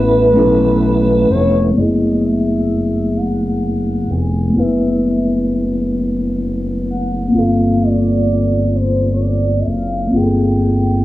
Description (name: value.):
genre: slow six-eight R&B.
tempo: 43 BPM (dotted quarters).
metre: 6/8.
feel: straight.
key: unclear.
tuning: A4 = 437 Hz.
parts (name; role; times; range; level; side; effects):
gliding portamento lead; melody; 0.0-11.0 s; B4 to G#5; -21 LUFS; right 1 dB; chorus, cassette tape.
mellow tine electric piano; accompaniment; 0.0-11.0 s; G#3 to B4; -16 LUFS; left 1 dB; medium stereo tremolo, cassette tape.
tonewheel organ; sustained chords; 0.0-1.7 s; E3 to B3; -20 LUFS; right 1 dB; overdrive, chorus vibrato, slow rotary speaker, cassette tape.
smooth gliding synth bass; bass; 0.0-11.0 s; E#1 to B1; -18 LUFS; equal; none.
room: light reverb.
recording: home recording on cassette, low-pass filter, small room ambience.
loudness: -13 LUFS.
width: side -15 dB against mid.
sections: 0.0-1.7 A section; 1.7-11.0 B section.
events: none.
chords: 0.0 B9sus4; 1.7 F#m11; 7.3 Gm11.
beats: 0.35 | 1.75 3.14 | 4.54 5.93 | 7.33 8.72 | 10.12.